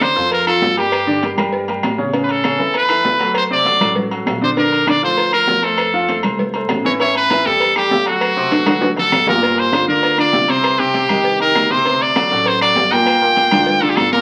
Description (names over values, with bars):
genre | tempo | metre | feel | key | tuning
latin, salsa | 198 BPM | 4/4 | straight | G minor | A4 = 443 Hz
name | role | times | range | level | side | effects
brilliant trumpet | melody | 0.0-14.2 s | F#4 to G5 | -17 LUFS | equal | none
clear upright piano | accompaniment | 0.0-14.2 s | Bb2 to F5 | -22 LUFS | equal | none
claves | percussion | 0.0-14.1 s | none | -33 LUFS | equal | none
congas | percussion | 0.0-14.2 s | none | -27 LUFS | equal | none
cowbell and bongos | percussion | 0.0-14.1 s | none | -29 LUFS | equal | none
timbales and agogo bells | percussion | 0.0-14.1 s | none | -25 LUFS | equal | none
upright bass | bass | 0.2-14.2 s | G1 to A2 | -33 LUFS | equal | none
room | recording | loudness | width
wet club reverb, RT60 0.7 s | very old 78 rpm record, vinyl crackle | -15 LUFS | mono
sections
0.0-9.4 A section; 9.4-14.2 B section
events
drum fill 8.5-9.4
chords
0.0 Bbmaj7; 0.9 Gm; 2.1 A; 3.4 D7; 4.6 Bbmaj7; 5.8 F; 7.0 A5; 8.2 D7; 9.4 Gm7; 10.6 Cmadd9; 11.8 D7; 13.1 Gm7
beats
0.01 0.32 0.62 | 0.93 1.23 1.53 1.84 | 2.14 2.44 2.75 3.05 | 3.36 3.66 3.96 4.27 | 4.57 4.87 5.18 5.48 | 5.79 6.09 6.39 6.70 | 7.00 7.30 7.61 7.91 | 8.21 8.52 8.82 9.12 | 9.43 9.73 10.03 10.34 | 10.64 10.94 11.24 11.55 | 11.85 12.15 12.46 12.76 | 13.06 13.36 13.66 13.97